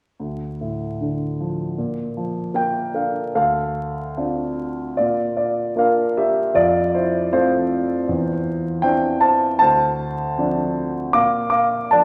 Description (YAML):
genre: classical, lyrical solo piano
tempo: 76 BPM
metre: 4/4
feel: uneven beats, rubato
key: unclear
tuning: A4 = 441 Hz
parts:
  - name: warm concert grand piano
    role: solo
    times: 0.2-12.0 s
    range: D2 to D6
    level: -20 LUFS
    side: equal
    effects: none
room: wet scoring stage reverb, RT60 1.6 s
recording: vinyl crackle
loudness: -21 LUFS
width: mono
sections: 0.2-3.3 A section; 3.3-12.0 B section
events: none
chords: 0.2 Dm; 1.8 Bb; 3.3 Dm7; 5.0 Bb; 6.5 F; 8.1 Cadd9/E; 9.6 Dm7; 11.2 Bb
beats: | 0.19 0.99 1.76 2.53 | 3.34 4.16 4.97 5.76 | 6.54 7.33 8.09 8.85 | 9.61 10.39 11.16 11.93